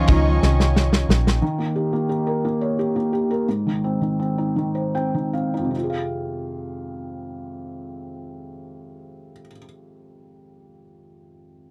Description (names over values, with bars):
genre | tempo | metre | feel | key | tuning
six-eight pop ballad | 49-60 BPM (dotted quarters) | 6/8 | straight | F minor | A4 = 440 Hz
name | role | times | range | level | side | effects
dark cello | melody | 0.0-0.8 s | F3 | -33 LUFS | equal | none
warm studio violin section | second line | 0.0-1.0 s | Db4 to Eb4 | -33 LUFS | equal | none
felt-muted upright piano | accompaniment | 0.0-11.7 s | F2 to G5 | -26 LUFS | equal | none
muted studio string section | sustained chords | 0.0-1.4 s | F4 to Db6 | -31 LUFS | equal | none
vintage muted fingered electric bass | bass | 0.0-1.4 s | Bb1 to Db2 | -21 LUFS | equal | none
loose indie drum kit | drums | 0.1-1.4 s | kick drum, ride cymbal, snare drum | -22 LUFS | equal | none
room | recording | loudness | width
little or no reverb | dry, close 1970s-style studio recording | -22 LUFS | mono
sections
0.0-1.4 A section; 1.4-5.7 B section; 5.7-10.6 C section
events
drum fill 0.4-1.4; slowing down 1.4-5.7; felt piano fill 4.6-5.7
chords
0.0 Dbadd9; 1.4 Eb7; 3.5 Ab; 5.7 Fm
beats
0.42 | 1.42 2.43 | 3.47 4.57 | 5.75 6.97 | 8.19 9.42